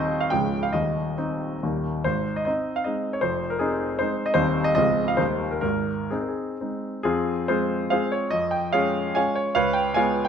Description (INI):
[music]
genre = classical, romantic triple-time dance for piano with dotted rhythms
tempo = 118-164 BPM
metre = 3/4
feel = rubato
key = Ab major, F minor from 7.1 s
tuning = A4 = 440 Hz
[part]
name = clear baby grand piano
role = solo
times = 0.0-10.3 s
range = Db1 to Ab5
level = -22 LUFS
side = equal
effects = none
[sound]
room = moderate recital hall reverb, RT60 1.5 s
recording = close, detailed microphones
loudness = -22 LUFS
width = side -7 dB against mid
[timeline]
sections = 0.0-7.1 A section; 7.1-10.3 B section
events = none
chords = 0.3 Db; 0.7 Cm/Eb; 1.6 Eb; 2.0 Ab; 3.2 Fm7; 4.4 Cm/Eb; 4.8 Dbmaj7; 5.2 Eb; 5.6 Ab; 7.1 Fm; 8.3 Db/F; 9.6 Db7